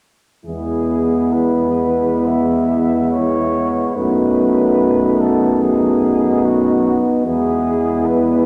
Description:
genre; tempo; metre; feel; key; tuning
classical, hymn-like piece for brass band; 61-75 BPM; 4/4; rubato; E major; A4 = 437 Hz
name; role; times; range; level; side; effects
mellow French horn section; second line; 0.4-8.5 s; D#4 to E4; -25 LUFS; equal; none
dark cornet; melody; 0.5-8.5 s; F#4 to E5; -24 LUFS; equal; none
mellow trombone; accompaniment; 0.5-8.5 s; G#3 to A3; -27 LUFS; equal; none
warm trombone section; accompaniment; 0.5-8.5 s; B3; -20 LUFS; equal; none
warm tuba; bass; 0.5-8.5 s; E2 to F#2; -22 LUFS; equal; none
room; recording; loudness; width
wet church reverb, RT60 3.5 s; none; -16 LUFS; mono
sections
0.5-8.5 A section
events
none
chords
0.5 E; 3.9 B7/F#; 7.3 E

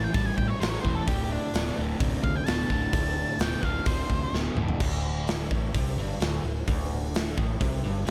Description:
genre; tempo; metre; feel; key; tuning
blues rock power trio and southern rock; 129 BPM; 4/4; straight; unclear; A4 = 440 Hz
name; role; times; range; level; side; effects
octave-fuzz lead guitar; melody; 0.0-4.3 s; D4 to A5; -35 LUFS; equal; distortion
crunchy overdriven guitar; riff; 0.0-8.1 s; D2 to G3; -34 LUFS; equal; none
vintage muted fingered electric bass; bass; 0.0-8.1 s; D1 to A2; -33 LUFS; equal; none
big rock drum kit; drums; 0.1-8.1 s; crash cymbal, hi-hat, kick drum, snare drum, toms; -31 LUFS; equal; none
room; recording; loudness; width
small room reverb; none; -28 LUFS; mono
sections
0.0-4.8 A section; 4.8-8.1 B section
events
lead electric guitar solo 0.0-4.8; drum fill 4.3-4.8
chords
0.0 A5; 1.1 D5

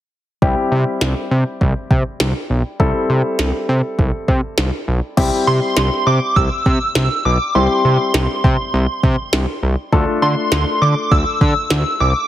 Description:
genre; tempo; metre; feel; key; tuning
synth-pop; 101 BPM; 4/4; straight; unclear; A4 = 440 Hz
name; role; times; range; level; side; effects
warm grand piano; accompaniment; 0.4-12.3 s; G3 to A4; -21 LUFS; left 3 dB; none
fat analog bass; bass; 0.4-12.1 s; B1 to D3; -16 LUFS; equal; none
minimal click drum kit; drums; 0.4-11.8 s; crash cymbal, kick drum, snare drum; -18 LUFS; equal; none
shimmering bell with halo; melody; 5.5-12.3 s; C6 to E6; -19 LUFS; right 1 dB; ensemble chorus, tremolo
room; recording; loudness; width
light reverb; heavily compressed radio sound, multiband compression; -14 LUFS; side -12 dB against mid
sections
0.4-5.2 A section; 5.2-12.3 B section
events
none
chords
0.4 C; 9.9 Dmadd9

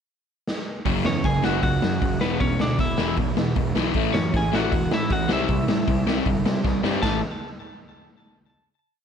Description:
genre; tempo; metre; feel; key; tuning
punk rock; 156 BPM; 4/4; straight; unclear; A4 = 439 Hz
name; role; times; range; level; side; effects
raw garage drum kit; drums; 0.5-7.1 s; crash cymbal, hi-hat, kick drum, snare drum; -25 LUFS; equal; none
crunchy overdriven guitar; riff; 0.9-7.2 s; E2 to C4; -26 LUFS; left 12 dB; none
sludgy distorted guitar; riff; 0.9-7.2 s; E2 to C4; -27 LUFS; right 12 dB; overdrive
fuzz picked electric bass; bass; 0.9-7.2 s; E1 to C3; -29 LUFS; equal; overdrive
lightly driven lead guitar; melody; 1.1-7.2 s; B3 to A5; -28 LUFS; equal; digital delay
room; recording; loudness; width
light reverb; none; -20 LUFS; side -7 dB against mid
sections
0.0-0.9 pickup bar; 0.9-7.0 verse; 7.0-8.6 final chord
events
drum fill 0.5-0.9, 6.6-7.0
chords
0.0 N.C.; 0.9 F#5; 2.2 E5; 4.0 A; 5.3 C; 7.0 A5

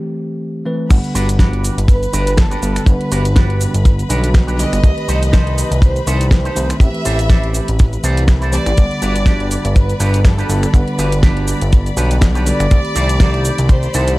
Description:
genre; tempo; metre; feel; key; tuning
nu-disco, nu disco; 122 BPM; 4/4; swing 55% on 16ths; G major; A4 = 439 Hz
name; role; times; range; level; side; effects
bell-like tine electric piano; accompaniment; 0.0-14.2 s; D3 to F#5; -22 LUFS; equal; slapback echo
bright studio string section; sustained chords; 0.9-14.2 s; B4 to B5; -29 LUFS; left 4 dB; sidechain pumping
fat analog bass; bass; 0.9-14.2 s; G1 to C2; -17 LUFS; equal; high-pass filter
kick drum; drums; 0.9-13.8 s; none; -10 LUFS; equal; none
pop drum kit; drums; 0.9-14.2 s; crash cymbal, finger snaps, hi-hat, shaker, snare drum; -23 LUFS; equal; none
electric guitar with an envelope filter; riff; 1.1-14.1 s; D4 to D5; -24 LUFS; right 2 dB; wide subtle chorus, slapback echo
warm chamber violin section; melody; 1.9-14.2 s; A4 to E5; -23 LUFS; equal; analog delay
room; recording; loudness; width
studio reverb; none; -12 LUFS; side -19 dB against mid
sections
0.9-14.2 A section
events
break 0.0-0.9; drop 0.9-14.2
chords
0.0 Am7; 0.9 Gmaj7; 4.8 Cm6; 6.8 Am7; 8.8 Gmaj7; 12.7 Cm6

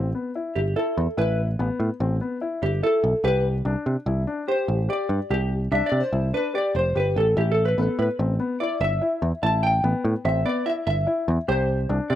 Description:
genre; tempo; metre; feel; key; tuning
progressive instrumental, progressive; 146 BPM; 5/4; straight; A minor; A4 = 441 Hz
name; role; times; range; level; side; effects
dark baby grand piano; arpeggios; 0.0-12.2 s; B3 to G4; -28 LUFS; left 4 dB; slapback echo
picked electric bass; bass; 0.0-12.2 s; F1 to C3; -23 LUFS; right 1 dB; none
vintage hollow-body jazz guitar; accompaniment; 0.6-12.2 s; G4 to A5; -24 LUFS; right 1 dB; double-tracked left and right, slapback echo
room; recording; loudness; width
little or no reverb; recorded outdoors, with no room sound; -21 LUFS; side -12 dB against mid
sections
0.0-12.2 A section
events
hollow-body jazz guitar solo 0.0-12.2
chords
0.0 Asus2; 3.2 Csus2; 7.4 Asus2; 11.5 Csus2

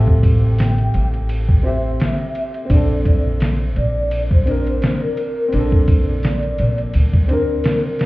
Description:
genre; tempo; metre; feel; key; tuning
trip hop; 85 BPM; 4/4; swing 56% on 16ths; unclear; A4 = 440 Hz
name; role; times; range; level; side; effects
dark upright piano; accompaniment; 0.0-8.1 s; C4 to C5; -24 LUFS; equal; harmonic tremolo, tape echo
upright bass; bass; 0.0-7.6 s; A1 to D2; -17 LUFS; equal; none
trip hop sampler-style drum kit; drums; 0.1-8.1 s; hi-hat, kick drum, ride cymbal, snare drum; -17 LUFS; equal; none
pure breathy sine lead; melody; 0.6-8.1 s; Bb4 to G5; -25 LUFS; left 1 dB; ensemble chorus, dub echo
room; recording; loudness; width
little or no reverb; heard muffled through a wall, club reverb, vinyl crackle, EQ; -15 LUFS; side -19 dB against mid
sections
0.0-8.1 A section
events
none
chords
0.0 Am7; 2.7 Bbmaj9

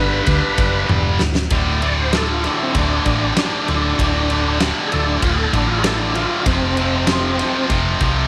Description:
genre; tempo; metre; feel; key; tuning
classic rock; 97 BPM; 4/4; straight; unclear; A4 = 440 Hz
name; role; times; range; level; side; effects
overdriven tonewheel organ; melody; 0.0-7.7 s; C4 to D5; -25 LUFS; equal; slow rotary speaker, chorus vibrato
tight distorted guitar; riff; 0.0-8.3 s; D2 to G3; -22 LUFS; equal; distortion
hollow-body short-scale fingered electric bass; bass; 0.0-8.2 s; D1 to D2; -24 LUFS; equal; none
huge arena drum kit; drums; 0.3-8.2 s; kick drum, ride cymbal, snare drum, toms; -24 LUFS; equal; none
room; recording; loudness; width
light reverb, small room ambience; none; -18 LUFS; mono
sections
0.0-1.5 A section; 1.5-8.3 B section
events
drum fill 0.9-1.5; tonewheel organ solo 1.5-8.3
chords
0.0 G; 1.5 D5; 6.5 F5

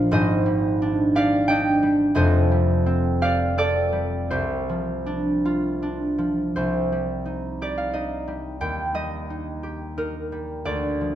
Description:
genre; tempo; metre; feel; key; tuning
classical, solo harp piece; 79-90 BPM; 3/4; rubato; C minor; A4 = 440 Hz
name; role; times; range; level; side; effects
concert harp; solo; 0.0-11.2 s; F1 to G5; -21 LUFS; equal; none
room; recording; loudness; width
wet recital hall reverb, RT60 1.7 s; none; -21 LUFS; side -11 dB against mid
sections
0.0-6.5 A section; 6.5-11.2 B section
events
none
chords
0.1 Abmaj7#11; 2.2 F9; 4.3 Cmadd9; 8.6 Ebmaj7

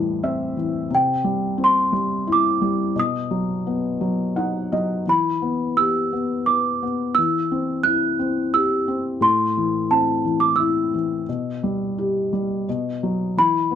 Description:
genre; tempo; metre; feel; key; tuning
children's music, lullaby; 87 BPM; 3/4; rubato; E minor; A4 = 440 Hz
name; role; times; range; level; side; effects
worn celesta; melody; 0.0-13.8 s; G5 to F#6; -20 LUFS; right 2 dB; none
felt-muted upright piano; accompaniment; 0.0-13.8 s; A2 to F#5; -22 LUFS; left 2 dB; none
room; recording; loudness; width
light reverb; dark, warm production; -19 LUFS; side -9 dB against mid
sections
0.0-13.4 A section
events
felt piano fill 0.0-0.9, 4.0-5.1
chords
0.0 Am7; 0.9 Cadd9; 3.0 B; 5.1 Em7; 7.2 C/E; 9.2 Am; 11.3 Em/B; 12.7 B5

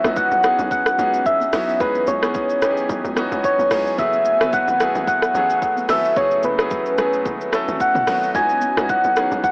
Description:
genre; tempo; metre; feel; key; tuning
amapiano; 110 BPM; 4/4; swing 55% on 16ths; C# minor; A4 = 442 Hz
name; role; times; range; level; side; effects
soft struck synth lead; melody; 0.0-9.5 s; B4 to G#5; -21 LUFS; equal; chorus, cassette tape, analog delay
bright grand piano; accompaniment; 0.0-9.5 s; D#3 to B4; -27 LUFS; equal; none
warm analog pad; sustained chords; 0.0-9.5 s; F#3 to G#5; -33 LUFS; equal; chorus, sidechain pumping
hollow log drum bass; bass; 0.0-9.5 s; F#1 to C#2; -32 LUFS; equal; none
deep house drum kit; drums; 0.0-9.5 s; hi-hat, kick drum, rim click, shaker, toms; -26 LUFS; equal; overdrive, cassette tape
congas; percussion; 0.0-9.5 s; none; -38 LUFS; equal; none
room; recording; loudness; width
light reverb; home recording on cassette, AM radio sound; -19 LUFS; mono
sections
0.0-9.5 A section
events
none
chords
0.0 C#m11; 4.0 F#m11; 8.3 C#m11

